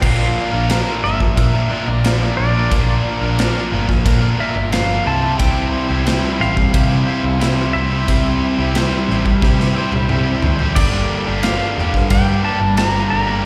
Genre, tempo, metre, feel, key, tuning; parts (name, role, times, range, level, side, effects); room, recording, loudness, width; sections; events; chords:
classic rock; 89 BPM; 4/4; straight; A4 = 440 Hz
clean lap steel guitar; melody; 0.0-13.5 s; D5 to Bb5; -25 LUFS; equal; slapback echo, tape echo
bright tonewheel organ; sustained chords; 0.0-13.4 s; E3 to D5; -34 LUFS; equal
distorted electric guitar; riff; 0.0-13.5 s; G2 to C5; -24 LUFS; equal; overdrive, slapback echo
distorted electric guitar; riff; 0.0-13.5 s; G2 to C5; -26 LUFS; equal; overdrive, slapback echo
hollow-body short-scale picked electric bass; bass; 0.0-13.4 s; E1 to C3; -21 LUFS; equal
gated 80s drum kit; drums; 0.0-12.9 s; crash cymbal, kick drum, ride cymbal, snare drum, toms; -22 LUFS; equal
little or no reverb; live gig heard through the venue's PA, recital hall reverb; -17 LUFS; mono
0.0-13.5 A section
drum fill 9.4-10.8
0.0 Bb; 5.1 C; 10.8 Gm